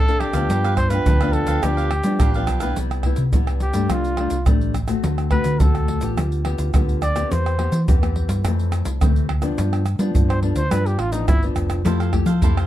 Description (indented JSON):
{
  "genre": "samba and choro",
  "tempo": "106 BPM",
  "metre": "4/4",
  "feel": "straight",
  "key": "unclear",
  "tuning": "A4 = 439 Hz",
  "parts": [
    { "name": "breathy trumpet", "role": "melody", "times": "0.0-11.5 s", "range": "Eb4 to D5", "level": "-24 LUFS", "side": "right 1 dB", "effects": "none" },
    { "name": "cavaquinho", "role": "accompaniment", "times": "0.0-2.8, 11.8-12.7 s", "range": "D4 to F5", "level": "-29 LUFS", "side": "right 7 dB", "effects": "none" },
    { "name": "nylon-string guitar", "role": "accompaniment", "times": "0.0-12.7 s", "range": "F2 to A4", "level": "-26 LUFS", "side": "left 5 dB", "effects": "none" },
    { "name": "hollow-body short-scale fingered electric bass", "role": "bass", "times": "0.0-12.7 s", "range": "F1 to G3", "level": "-22 LUFS", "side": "equal", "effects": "none" },
    { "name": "tube shaker, pandeiro, tamborim and surdo", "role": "percussion", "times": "0.1-12.7 s", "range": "none", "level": "-21 LUFS", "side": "right 1 dB", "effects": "none" }
  ],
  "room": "light reverb",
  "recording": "dark, warm production",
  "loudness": "-17 LUFS",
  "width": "side -13 dB against mid",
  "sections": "0.0-2.8 A section; 2.8-12.7 B section",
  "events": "trumpet solo 2.8-12.7",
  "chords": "0.5 G7; 2.8 Cmaj7; 3.9 F69/C; 5.0 D7; 6.2 G7/D; 7.3 Cmaj7/E; 8.4 Fmaj7; 9.6 G7; 11.9 Fmaj9",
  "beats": "| 0.50 1.06 1.63 2.20 | 2.77 3.33 3.90 4.47 | 5.04 5.61 6.17 6.74 | 7.31 7.88 8.45 9.02 | 9.58 10.15 10.72 11.29 | 11.86 12.43"
}